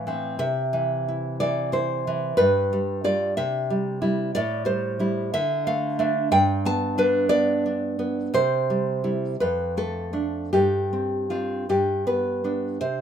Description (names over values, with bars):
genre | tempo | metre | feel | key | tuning
romantic piece for solo classical guitar | 51-63 BPM (dotted quarters) | 6/8 | rubato | unclear | A4 = 440 Hz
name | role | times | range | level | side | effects
nylon-string guitar | solo | 0.0-13.0 s | F2 to A5 | -22 LUFS | right 1 dB | none
room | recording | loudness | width
moderate studio reverb, RT60 0.8 s | minimal, uncompressed stereo recording | -22 LUFS | side -8 dB against mid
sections
0.0-12.8 A section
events
none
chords
0.4 C; 2.4 G7; 3.4 C; 4.3 Am7; 5.3 Dm; 6.3 G; 8.3 C; 9.4 Dm/F; 10.5 Gsus4; 11.7 G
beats
| 0.41 1.39 | 2.37 3.36 | 4.33 5.32 | 6.31 7.30 | 8.31 9.37 | 10.51 11.67 | 12.81